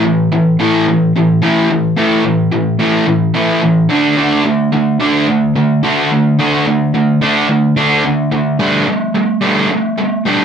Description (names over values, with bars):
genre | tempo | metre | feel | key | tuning
rock | 109 BPM | 4/4 | straight | unclear | A4 = 440 Hz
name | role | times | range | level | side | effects
overdriven electric guitar | solo | 0.0-10.4 s | A2 to D4 | -11 LUFS | equal | none
room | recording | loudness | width
wet studio reverb, RT60 0.5 s | band playing live in one room | -11 LUFS | side -7 dB against mid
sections
0.0-10.4 A section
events
none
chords
0.0 A5; 3.9 D5; 8.6 Gsus2